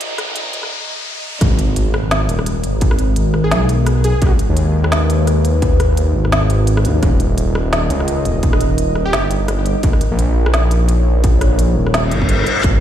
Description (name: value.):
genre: half-time drum and bass.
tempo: 171 BPM.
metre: 4/4.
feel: swing 57% on 16ths, half-time.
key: G# harmonic minor.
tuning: A4 = 440 Hz.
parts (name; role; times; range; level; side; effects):
deep dark ambient pad; sustained chords; 2.2-12.8 s; G#3 to D#5; -22 LUFS; equal; chorus, built-in reverb, sidechain pumping.
dark detuned saw bass; bass; 0.0-12.8 s; D#1 to D#2; -15 LUFS; equal; high-pass filter.
organic electronic drum kit; drums; 0.0-12.7 s; hi-hat, rim click, snare drum; -23 LUFS; equal; overdrive.
riser, impact and reverse cymbal; sound effects; 0.0-2.8, 12.0-12.6 s; none; -22 LUFS; left 1 dB; none.
pulsing gated texture; texture; 0.0-0.7 s; D#4 to D#5; -35 LUFS; equal; chorus, built-in reverb.
electronic kick drum; drums; 1.4-12.7 s; none; -15 LUFS; equal; distortion.
plucky unison lead; melody; 3.4-4.3, 9.1-9.3 s; G4 to G#4; -28 LUFS; equal; ping-pong delay.
room: little or no reverb.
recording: played on a big sound system in a bare room, large studio reverb, high-pass filter.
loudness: -13 LUFS.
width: side -10 dB against mid.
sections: 0.0-1.4 A section; 1.4-12.8 B section.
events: build-up 0.0-1.4; riser 0.0-1.4; break 0.7-1.4; drop 1.4-12.8; impact 1.4-2.8; reverse cymbal 12.0-12.6.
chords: 0.0 D#5; 1.4 G#m; 7.0 D#.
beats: | 0.01 0.36 0.71 1.06 | 1.41 1.76 2.12 2.47 | 2.82 3.17 3.52 3.87 | 4.22 4.57 4.92 5.27 | 5.62 5.97 6.33 6.68 | 7.03 7.38 7.73 8.08 | 8.43 8.78 9.13 9.48 | 9.84 10.19 10.54 10.89 | 11.24 11.59 11.94 12.29 | 12.64.